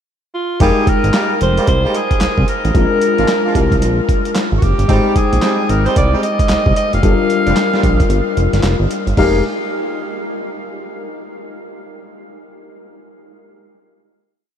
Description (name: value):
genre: R&B, new jack swing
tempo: 112 BPM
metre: 4/4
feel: swing 62% on 16ths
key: F dorian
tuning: A4 = 440 Hz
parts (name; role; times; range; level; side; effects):
- raspy alto saxophone; melody; 0.3-9.4 s; F4 to F5; -20 LUFS; equal; ping-pong delay
- tine electric piano; accompaniment; 0.6-9.4 s; G3 to G5; -19 LUFS; left 4 dB; analog chorus
- warm horn section; stabs; 0.6-9.4 s; F3 to Ab4; -24 LUFS; right 3 dB; ping-pong delay
- fat analog bass; bass; 0.6-9.4 s; F1 to C2; -16 LUFS; right 1 dB; none
- dusty soul sampler-style drum kit; drums; 0.6-9.3 s; crash cymbal, handclaps, hi-hat, kick drum, snare drum; -18 LUFS; right 1 dB; overdrive
room: moderate huge ambient reverb, RT60 8.2 s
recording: dreamy mix soaked in reverb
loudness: -12 LUFS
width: side -9 dB against mid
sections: 0.0-0.6 pickup bar; 0.6-9.2 verse; 9.2-11.3 final chord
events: break 8.1-9.2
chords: 0.0 N.C.; 0.6 Fm11; 2.7 Bb7; 4.9 Abmaj7; 7.0 Gm7; 9.2 Fm11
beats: 0.07 | 0.60 1.14 1.67 2.21 | 2.74 3.28 3.81 4.35 | 4.89 5.42 5.96 6.49 | 7.03 7.57 8.10 8.64 | 9.17